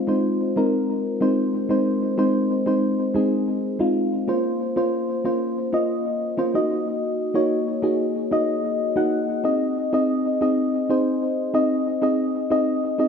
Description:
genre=pop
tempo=93 BPM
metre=4/4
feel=straight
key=unclear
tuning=A4 = 439 Hz
part: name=mellow FM electric piano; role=solo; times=0.0-13.1 s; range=Ab3 to Gb5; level=-20 LUFS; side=equal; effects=chorus, digital delay
room=moderate scoring stage reverb, RT60 1.8 s, digital ambience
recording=none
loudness=-20 LUFS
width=side -6 dB against mid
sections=0.0-13.1 A section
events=none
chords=0.0 Ab; 4.3 Bbmadd9; 6.5 Ebm; 9.4 Ab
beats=0.41 1.06 | 1.70 2.35 2.99 3.64 | 4.28 4.93 5.57 6.22 | 6.86 7.51 8.15 8.80 | 9.45 10.09 10.73 11.38 | 12.03 12.67

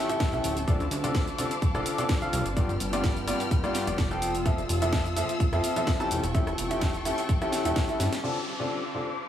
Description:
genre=piano house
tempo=127 BPM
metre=4/4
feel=swing 53% on 16ths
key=D dorian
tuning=A4 = 436 Hz
part: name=dark studio string section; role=sustained chords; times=0.0-9.3 s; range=A4 to F6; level=-37 LUFS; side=left 3 dB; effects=sidechain pumping, low-pass filter
part: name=clear upright piano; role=riff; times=0.0-9.1 s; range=G2 to A5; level=-29 LUFS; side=left 1 dB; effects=sidechain pumping, low-pass filter, digital delay
part: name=granular cloud pad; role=texture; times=0.0-9.3 s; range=B3 to E6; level=-35 LUFS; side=right 1 dB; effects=built-in reverb, sidechain pumping
part: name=house drum kit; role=drums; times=0.1-8.2 s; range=hi-hat, rim click, shaker, snare drum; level=-34 LUFS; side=equal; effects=none
part: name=electronic kick drum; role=drums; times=0.2-7.9 s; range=none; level=-27 LUFS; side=equal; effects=none
part: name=plucky analog bass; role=bass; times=0.3-8.1 s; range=D1 to F2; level=-32 LUFS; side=equal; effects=sidechain pumping
part: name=downlifter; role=sound effects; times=8.2-9.3 s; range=none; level=-37 LUFS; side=equal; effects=none
room=light reverb, digital ambience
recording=none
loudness=-25 LUFS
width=side -10 dB against mid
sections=0.0-8.2 A section; 8.2-9.3 B section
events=drum fill 8.0; filter sweep on upright piano 8.2-9.3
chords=0.0 A7; 0.7 Dm7; 2.6 G7; 4.2 Fmaj7; 6.1 A7/E; 8.2 Dm7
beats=0.20 | 0.68 1.15 1.62 2.09 | 2.57 3.04 3.51 3.98 | 4.46 4.93 5.40 5.87 | 6.35 6.82 7.29 7.76 | 8.24 8.71 9.18

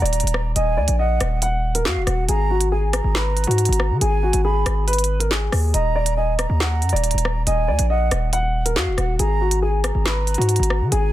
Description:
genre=hip hop, drill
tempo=139 BPM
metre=4/4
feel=half-time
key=Eb harmonic minor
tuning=A4 = 440 Hz
part: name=dark baby grand piano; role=melody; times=0.0-11.1 s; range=Gb4 to Gb5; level=-23 LUFS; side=left 1 dB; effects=low-pass filter
part: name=mellow hollow silver concert flute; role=second line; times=0.0-11.1 s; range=F5 to Cb6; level=-29 LUFS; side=right 4 dB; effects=digital delay
part: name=distorted 808-style bass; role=bass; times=0.0-11.1 s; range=Eb1 to Eb3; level=-20 LUFS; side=equal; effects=distortion
part: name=drill drum kit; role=drums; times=0.1-11.0 s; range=handclaps, hi-hat, rim click, snare drum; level=-24 LUFS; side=equal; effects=soft clipping on snare
room=small room reverb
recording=dense, heavily limited modern master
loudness=-17 LUFS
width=side -14 dB against mid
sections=0.0-11.1 A section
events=none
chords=0.0 Ebm; 2.3 Abm; 5.7 Ebm; 9.2 N.C.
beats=0.13 | 0.56 0.99 1.42 1.85 | 2.29 2.72 3.15 3.58 | 4.01 4.45 4.88 5.31 | 5.74 6.17 6.60 7.04 | 7.47 7.90 8.33 8.76 | 9.19 9.62 10.06 10.49 | 10.92

